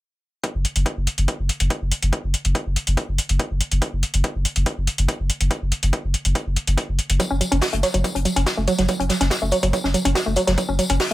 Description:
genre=driving peak-time techno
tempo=142 BPM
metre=4/4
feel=straight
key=F# minor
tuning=A4 = 440 Hz
part: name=electronic hi-hat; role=drums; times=0.4-11.1 s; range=none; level=-26 LUFS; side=left 1 dB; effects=sidechain pumping on hats
part: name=electronic kick drum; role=drums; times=0.4-11.1 s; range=none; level=-28 LUFS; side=equal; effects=high-pass filter on kick, high-pass filter on room
part: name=saturated sub bass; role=bass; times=0.5-11.1 s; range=F#1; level=-22 LUFS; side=equal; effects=overdrive, sidechain pumping, low-pass filter
part: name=woody wave-folded pluck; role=riff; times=7.2-11.1 s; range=F#3 to F#4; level=-21 LUFS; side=right 1 dB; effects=chorus, tube saturation, sidechain pumping, digital delay
part: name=warm soul drum kit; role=drums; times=7.2-11.1 s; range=hi-hat, snare drum, tambourine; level=-28 LUFS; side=left 2 dB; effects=high-pass filter on hats, high-pass filter on snare, high-pass filter on perc, high-pass filter on room
room=studio ambience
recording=none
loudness=-19 LUFS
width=side -17 dB against mid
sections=0.4-11.1 A section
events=none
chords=none

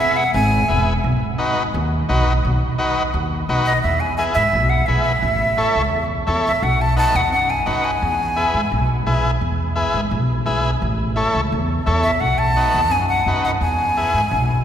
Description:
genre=latin, cumbia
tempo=172 BPM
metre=4/4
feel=straight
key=E major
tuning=A4 = 442 Hz
part: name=breathy bright jazz flute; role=melody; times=0.0-0.8, 3.7-8.9, 12.0-14.6 s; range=D#5 to A5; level=-20 LUFS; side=equal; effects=none
part: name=overdriven combo organ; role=accompaniment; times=0.0-14.2 s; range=D#4 to C#5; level=-22 LUFS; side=left 1 dB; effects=none
part: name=upright bass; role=bass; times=0.3-14.6 s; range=E1 to G#2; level=-20 LUFS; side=equal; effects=none
room=wet cathedral reverb, RT60 4.6 s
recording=recorded in a church or concert hall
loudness=-16 LUFS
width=side -9 dB against mid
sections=0.0-3.8 A section; 3.8-14.6 B section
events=none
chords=0.0 E; 1.0 B; 3.8 E; 5.2 A; 6.6 B; 8.0 E; 10.8 A; 12.2 B7; 13.6 E

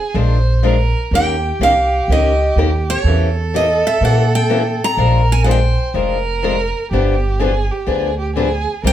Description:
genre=acoustic string swing (jazz manouche)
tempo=124 BPM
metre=4/4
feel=swing 65% on 8ths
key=unclear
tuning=A4 = 440 Hz
part: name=warm violin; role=second line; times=0.0-8.9 s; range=G4 to C5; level=-22 LUFS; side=right 4 dB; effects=none
part: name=picked steel-string acoustic guitar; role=accompaniment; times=0.1-8.9 s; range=C3 to Bb4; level=-20 LUFS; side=left 5 dB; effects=none
part: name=upright bass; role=bass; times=0.1-8.9 s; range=F1 to Bb2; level=-16 LUFS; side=right 1 dB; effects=none
part: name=picked steel-string acoustic guitar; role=melody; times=1.2-8.9 s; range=Db5 to Bb5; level=-17 LUFS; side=right 1 dB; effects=plate reverb
room=wet small room reverb, RT60 0.5 s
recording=heard from further back in the room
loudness=-13 LUFS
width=side -11 dB against mid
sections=0.0-8.9 A section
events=none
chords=0.2 Bb7; 1.1 Eb7; 3.0 Edim7; 5.0 Bb7; 6.9 G7b9

